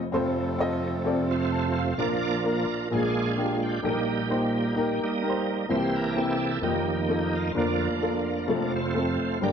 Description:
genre	uptempo gospel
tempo	129 BPM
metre	4/4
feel	swing 55% on 8ths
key	unclear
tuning	A4 = 441 Hz
part	warm upright piano	accompaniment	0.0-9.5 s	F1 to A5	-27 LUFS	left 2 dB	none
part	accordion	sustained chords	0.1-2.0 s	A3 to A4	-38 LUFS	right 1 dB	none
part	bright tonewheel organ	sustained chords	0.1-9.5 s	F2 to D5	-27 LUFS	right 4 dB	fast rotary speaker, overdrive, chorus vibrato
room	moderate echo chamber reverb, RT60 1.6 s, small room ambience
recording	dark, warm production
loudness	-24 LUFS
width	side -7 dB against mid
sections	0.1-2.0 A section; 2.0-9.5 B section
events	tonewheel organ solo 0.1-2.0, 2.0-9.5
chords	0.1 F; 2.0 Bb; 2.9 Bb7; 3.8 Eb/Bb; 5.7 C7; 6.6 F9sus4; 7.6 Bb/F; 8.5 F

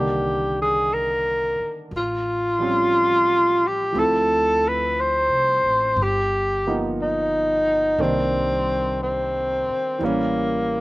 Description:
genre	jazz ballad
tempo	59 BPM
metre	4/4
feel	swing 68% on 8ths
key	C minor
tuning	A4 = 440 Hz
part	breathy tenor saxophone	melody	0.0-10.8 s	Bb3 to C5	-20 LUFS	equal	slapback echo
part	warm concert grand piano	accompaniment	0.0-10.8 s	D3 to E4	-27 LUFS	right 2 dB	none
part	upright bass	bass	0.0-10.8 s	G1 to D2	-31 LUFS	equal	none
room	little or no reverb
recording	recorded outdoors, with no room sound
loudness	-19 LUFS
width	side -20 dB against mid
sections	0.0-10.8 A section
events	none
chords	0.0 Cm9; 1.9 A7alt; 3.9 Dm7; 6.0 G7alt; 8.0 Cm7; 10.0 A7b9

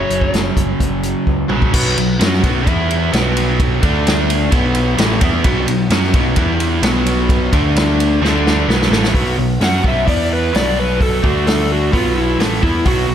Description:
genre	blues rock power trio and southern rock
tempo	129 BPM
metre	4/4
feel	straight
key	B minor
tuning	A4 = 440 Hz
part	overdriven slide guitar	melody	0.0-0.3, 9.6-13.1 s	E4 to F#5	-19 LUFS	left 1 dB	none
part	biting overdriven guitar	riff	0.0-13.1 s	F#2 to F#4	-17 LUFS	equal	none
part	growling picked electric bass	bass	0.0-13.1 s	F#1 to F#2	-19 LUFS	equal	overdrive
part	vintage drum kit	drums	0.1-13.0 s	crash cymbal, hi-hat, kick drum, ride cymbal, snare drum, toms	-17 LUFS	equal	none
room	moderate lush hall reverb, RT60 2.0 s, studio reverb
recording	big arena sound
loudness	-13 LUFS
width	side -9 dB against mid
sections	0.0-1.7 A section; 1.7-9.1 B section; 9.1-13.1 C section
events	drum fill 1.3-1.7, 8.2-9.1; electric slide guitar solo 9.1-13.1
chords	0.0 F#5; 1.7 B5; 2.7 E5; 3.1 B5; 3.8 D5; 4.5 B5; 6.4 E5; 6.8 B5; 7.5 D5; 8.7 B5; 10.1 E5; 10.5 B5; 11.2 D5; 11.9 B5

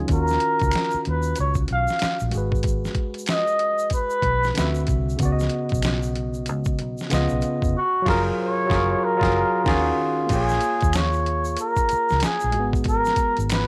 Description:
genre	R&B, neo-soul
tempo	94 BPM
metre	4/4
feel	swing 60% on 16ths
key	Eb minor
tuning	A4 = 440 Hz
part	barky tine electric piano	accompaniment	0.0-13.7 s	Db3 to E5	-28 LUFS	equal	none
part	vintage muted fingered electric bass	bass	0.0-13.7 s	F1 to Eb2	-27 LUFS	equal	none
part	trumpet with cup mute	melody	0.1-13.7 s	Gb4 to F5	-25 LUFS	equal	slapback echo
part	boom bap sampler-style drum kit	drums	0.1-13.7 s	crash cymbal, hi-hat, kick drum, snare drum	-28 LUFS	equal	none
part	tube shaker and finger snaps	percussion	0.1-13.7 s	none	-40 LUFS	equal	none
room	light reverb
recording	none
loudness	-22 LUFS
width	mono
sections	0.1-10.3 A section; 10.3-13.7 B section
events	band accent 7.7-10.3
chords	0.1 Ebm9; 2.3 Abm7; 4.6 D9; 5.2 Db9sus4; 7.1 Db9; 7.7 Gbmaj9; 9.7 Ebm11; 10.3 Bbm7; 12.5 Abm9

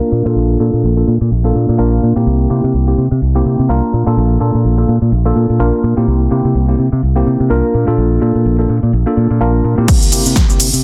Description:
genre	filtered disco house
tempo	126 BPM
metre	4/4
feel	swing 57% on 16ths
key	unclear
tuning	A4 = 439 Hz
part	mellow tine electric piano	accompaniment	0.0-10.7 s	Bb3 to Bb4	-18 LUFS	equal	phaser, sidechain pumping, low-pass filter
part	fingered electric bass	bass	0.1-10.8 s	Bb1 to C3	-15 LUFS	equal	sidechain pumping, low-pass filter
part	electronic kick drum	drums	9.9-10.5 s	none	-14 LUFS	equal	overdrive, studio ambience
part	punchy analog drum machine	drums	9.9-10.8 s	crash cymbal, hi-hat, shaker, snare drum	-17 LUFS	equal	overdrive, low-pass filter on cymbals, studio ambience, low-pass filter on perc, low-pass filter on hats, low-pass filter on snare
room	light reverb, digital ambience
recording	dense, heavily limited modern master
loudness	-13 LUFS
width	mono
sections	0.0-9.9 A section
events	filter sweep 0.0-9.9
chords	0.1 Bbmaj7; 2.3 C7; 3.9 Bbmaj7; 6.1 C7; 7.7 Bbmaj7; 9.9 C7

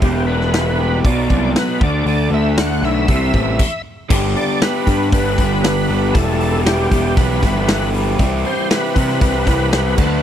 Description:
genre	classic rock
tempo	118 BPM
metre	4/4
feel	straight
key	unclear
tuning	A4 = 440 Hz
part	overdriven tonewheel organ	melody	0.0-10.2 s	G4 to F#5	-22 LUFS	equal	slow rotary speaker, chorus vibrato
part	overdriven electric guitar	riff	0.0-10.2 s	E2 to G4	-23 LUFS	right 12 dB	none
part	raw garage guitar	riff	0.0-10.2 s	E2 to G4	-22 LUFS	left 12 dB	overdrive
part	fuzz picked electric bass	bass	0.0-10.2 s	E1 to C3	-19 LUFS	equal	overdrive
part	big rock drum kit	drums	0.0-10.1 s	crash cymbal, hi-hat, kick drum, snare drum	-19 LUFS	equal	none
part	string machine, full ensemble	sustained chords	4.1-10.2 s	G3 to E5	-30 LUFS	right 1 dB	none
room	little or no reverb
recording	dry, close 1970s-style studio recording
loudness	-14 LUFS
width	side -10 dB against mid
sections	0.0-4.1 A section; 4.1-10.2 B section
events	stop 3.6-4.1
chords	0.0 Em; 1.0 B; 1.8 D; 3.1 C; 4.1 G; 6.1 Em; 8.2 C

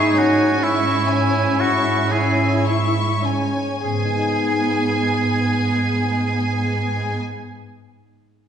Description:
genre	classical, slow romantic movement for symphony orchestra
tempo	32-45 BPM (dotted quarters)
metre	12/8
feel	rubato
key	G# minor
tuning	A4 = 440 Hz
part	rich studio violin section	melody	0.0-7.2 s	G#5 to C#6	-26 LUFS	left 3 dB	none
part	bright oboe	second line	0.0-7.2 s	E4 to G#4	-23 LUFS	right 3 dB	none
part	rich studio violin section	second line	0.0-7.2 s	C#4 to E5	-25 LUFS	left 2 dB	none
part	warm chamber viola section	accompaniment	0.0-7.2 s	B3 to E4	-23 LUFS	equal	none
part	concert harp	arpeggios	0.0-7.7 s	G#2 to D#5	-29 LUFS	left 3 dB	none
part	rich studio cello section	bass	0.0-7.2 s	G#2	-24 LUFS	right 3 dB	none
room	wet scoring stage reverb, RT60 1.6 s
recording	recorded in a church or concert hall, nothing above 10.5 kHz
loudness	-17 LUFS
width	side -8 dB against mid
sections	0.0-3.8 A section; 3.8-8.5 B section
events	slowing down 0.0-3.8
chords	0.0 C#m/G#; 3.8 G#m

